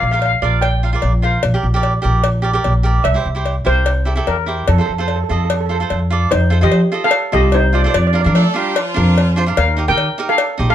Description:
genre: calypso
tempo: 147 BPM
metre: 4/4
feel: swing 54% on 16ths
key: Bb major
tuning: A4 = 438 Hz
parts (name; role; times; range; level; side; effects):
- steel pan; melody; 0.0-10.7 s; Eb4 to G5; -18 LUFS; equal; none
- cavaquinho; accompaniment; 0.0-10.7 s; D4 to F5; -22 LUFS; right 4 dB; none
- upright bass; bass; 0.0-10.7 s; Bb1 to F3; -15 LUFS; equal; none
- cowbell; percussion; 0.2-10.5 s; none; -22 LUFS; left 4 dB; none
- brilliant horn section; second line; 8.3-9.6 s; F3 to A4; -22 LUFS; right 1 dB; none
room: light reverb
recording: none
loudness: -13 LUFS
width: side -11 dB against mid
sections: 0.0-6.3 A section; 6.3-10.7 B section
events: none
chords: 0.0 Bbsus2; 1.4 Gm7/Bb; 3.1 C7; 4.7 F; 6.3 F7; 7.9 Bb/F; 9.6 Ebadd9

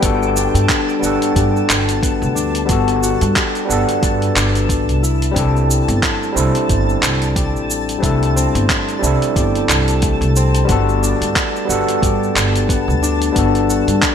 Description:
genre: sunset chillout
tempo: 90 BPM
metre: 4/4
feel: swing 57% on 16ths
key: unclear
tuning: A4 = 440 Hz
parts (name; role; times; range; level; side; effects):
- overdriven tine electric piano; accompaniment; 0.0-14.1 s; G3 to F#5; -19 LUFS; moving between left 6 dB and right 3 dB; auto-pan, digital delay
- concert harp; arpeggios; 0.0-14.1 s; A3 to G4; -23 LUFS; left 6 dB; digital delay
- upright bass; bass; 0.0-14.0 s; G1 to G2; -18 LUFS; right 1 dB; none
- dusty soul sampler-style drum kit; drums; 0.0-14.1 s; cabasa, handclaps, hi-hat; -20 LUFS; right 1 dB; gated reverb
- electronic kick drum; drums; 0.0-14.1 s; none; -20 LUFS; right 1 dB; none
- twinkling granular texture; texture; 0.0-14.1 s; A5; -27 LUFS; left 2 dB; built-in reverb, wide subtle chorus
room: moderate lush hall reverb, RT60 1.6 s, digital ambience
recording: bright 1980s-style digital production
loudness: -14 LUFS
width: side -8 dB against mid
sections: 0.0-14.1 A section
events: none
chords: 0.0 Gmaj7; 5.0 C6; 10.7 Gmaj7

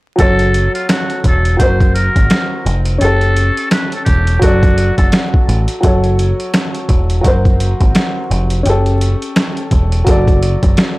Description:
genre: hip hop, boom-bap hip-hop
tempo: 85 BPM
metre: 4/4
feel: swing 58% on 16ths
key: unclear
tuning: A4 = 439 Hz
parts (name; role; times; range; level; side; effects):
- trumpet with metal mute; melody; 0.2-5.1 s; E#4 to B#4; -19 LUFS; equal; high-pass filter, low-pass filter, tape echo
- warm upright piano; accompaniment; 0.2-11.0 s; F#3 to D5; -18 LUFS; equal; high-pass filter, low-pass filter
- deep dub picked electric bass; bass; 0.2-10.8 s; E1 to A1; -14 LUFS; equal; tube saturation
- boom bap sampler-style drum kit; drums; 0.2-11.0 s; hi-hat, kick drum, snare drum; -14 LUFS; equal; none
room: little or no reverb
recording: dry, gritty hardware recording, vinyl crackle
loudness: -11 LUFS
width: side -20 dB against mid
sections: 0.2-11.0 A section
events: none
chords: 0.2 F#m; 1.6 G#7/F# (rootless); 3.0 A7/F#; 4.4 D/F#; 5.8 F#m; 7.2 G#7/F# (rootless); 8.7 A7/F#; 10.1 D/F#

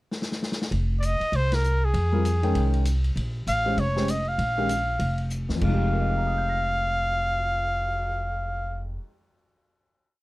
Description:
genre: modal jazz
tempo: 196 BPM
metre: 4/4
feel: swing 60% on 8ths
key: F minor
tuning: A4 = 440 Hz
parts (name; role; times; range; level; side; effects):
- vintage drum kit; drums; 0.1-8.0 s; crash cymbal, cymbal swell, hi-hat, kick drum, ride cymbal, snare drum; -36 LUFS; left 2 dB; none
- upright bass; bass; 0.7-9.0 s; F1 to F2; -25 LUFS; equal; none
- clear trumpet; melody; 1.0-8.8 s; Ab4 to F5; -26 LUFS; equal; none
- warm concert grand piano; accompaniment; 2.1-9.8 s; F2 to Bb6; -30 LUFS; left 1 dB; none
room: little or no reverb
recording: close, detailed microphones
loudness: -23 LUFS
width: side -19 dB against mid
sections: 0.0-0.7 pickup bar; 0.7-5.6 A section; 5.6-8.1 final chord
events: drum fill 0.1-0.7, 5.3-5.6; band accent 1.5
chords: 0.0 N.C.; 0.7 Fm9; 3.2 Bbm7; 5.6 Fm9

